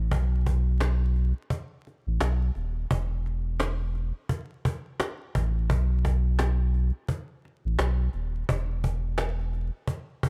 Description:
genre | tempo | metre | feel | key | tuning
hip hop, boom-bap hip-hop | 86 BPM | 4/4 | swing 60% on 16ths | unclear | A4 = 441 Hz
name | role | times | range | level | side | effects
sub bass with octave | bass | 0.0-9.7 s | D#1 to B1 | -28 LUFS | equal | none
cajon | drums | 0.1-10.3 s | none | -32 LUFS | equal | none
room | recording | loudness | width
small room reverb | vinyl crackle | -28 LUFS | mono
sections
0.0-10.3 A section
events
none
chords
none

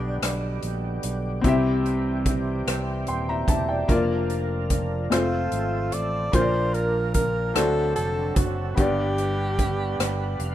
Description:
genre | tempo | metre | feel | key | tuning
slow gospel | 49 BPM (dotted quarters) | 6/8 | straight | Bb major | A4 = 439 Hz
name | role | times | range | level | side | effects
breathy tenor saxophone | melody | 0.0-0.6, 5.1-10.5 s | D4 to D5 | -28 LUFS | right 1 dB | none
bright upright piano | accompaniment | 0.0-10.5 s | G2 to C6 | -26 LUFS | left 2 dB | none
overdriven tonewheel organ | sustained chords | 0.0-10.5 s | D3 to F5 | -32 LUFS | right 4 dB | fast rotary speaker, chorus vibrato
fingered electric bass | bass | 0.0-10.5 s | Eb1 to D2 | -28 LUFS | equal | none
swinging big-band drum kit | drums | 0.2-10.5 s | hi-hat, kick drum, rim click | -26 LUFS | equal | none
room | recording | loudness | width
light reverb, small room ambience | rough home demo mix | -22 LUFS | side -12 dB against mid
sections
0.0-10.5 A section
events
tonewheel organ fill 10.0-10.5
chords
0.0 G/B; 1.4 C; 3.9 Bb/F; 5.1 F; 6.3 Bb; 7.6 D7; 8.8 G

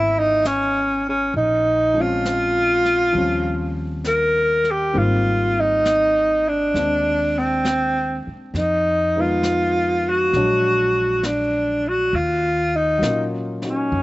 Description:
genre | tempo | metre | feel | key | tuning
jazz ballad | 67 BPM | 4/4 | swing 69% on 8ths | Eb minor | A4 = 440 Hz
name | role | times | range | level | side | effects
breathy tenor saxophone | melody | 0.0-14.0 s | C4 to Bb4 | -18 LUFS | equal | slapback echo
warm grand piano | accompaniment | 0.0-14.0 s | Eb3 to D#5 | -28 LUFS | left 2 dB | slapback echo
upright bass | bass | 0.0-14.0 s | G#1 to Bb2 | -27 LUFS | equal | none
jazz brush drum kit | drums | 0.4-14.0 s | brushed snare drum, hi-hat, snare drum | -30 LUFS | left 1 dB | none
room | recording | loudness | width
little or no reverb | recorded outdoors, with no room sound, nothing above 7.9 kHz | -17 LUFS | side -18 dB against mid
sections
0.0-14.0 A section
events
none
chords
0.0 Emaj9; 1.3 Bbm7; 3.1 Eb13; 4.9 Abmaj9; 8.5 Fm7b5; 10.3 Bb7alt; 12.1 Ebm9

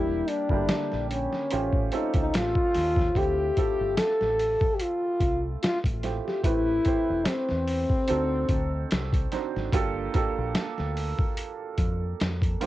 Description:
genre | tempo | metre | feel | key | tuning
R&B, neo-soul | 73 BPM | 4/4 | swing 55% on 16ths | D minor | A4 = 440 Hz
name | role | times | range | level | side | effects
warm French horn | melody | 0.0-9.3 s | C4 to A4 | -26 LUFS | left 2 dB | cassette tape
warm baby grand piano | accompaniment | 0.0-12.7 s | D3 to B#4 | -32 LUFS | right 7 dB | cassette tape
deep dub fingered electric bass | bass | 0.0-12.5 s | E1 to F2 | -31 LUFS | equal | none
boom bap sampler-style drum kit | drums | 0.3-12.7 s | hi-hat, kick drum, snare drum | -27 LUFS | equal | cassette tape
room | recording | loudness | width
moderate booth ambience, RT60 0.2 s | home recording on cassette | -24 LUFS | side -15 dB against mid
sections
0.0-3.2 A section; 3.2-12.7 B section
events
none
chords
0.0 Em7b5; 1.5 A7alt; 3.2 Dm11 (rootless); 6.4 Am9; 8.1 D7b9; 9.7 Gm9

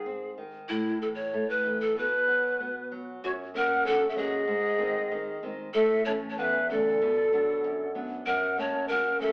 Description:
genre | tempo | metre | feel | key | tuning
andean folk, Andean ensemble | 95 BPM | 2/4 | straight | unclear | A4 = 439 Hz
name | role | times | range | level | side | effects
breathy bright large pan pipes | melody | 0.0-9.3 s | E4 to C#5 | -26 LUFS | equal | none
flamenco guitar | accompaniment | 0.0-9.3 s | E2 to D4 | -34 LUFS | equal | none
large quena | second line | 3.3-9.3 s | C#5 to A5 | -32 LUFS | left 1 dB | none
room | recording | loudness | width
wet large studio reverb, RT60 1.0 s | band playing live in one room, AM radio sound | -25 LUFS | side -28 dB against mid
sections
0.0-3.2 A section; 3.2-9.3 A section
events
none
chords
0.0 G#; 0.7 A5; 2.0 B5; 3.2 F#; 4.5 G#; 5.7 A; 7.0 Bm; 8.3 F#

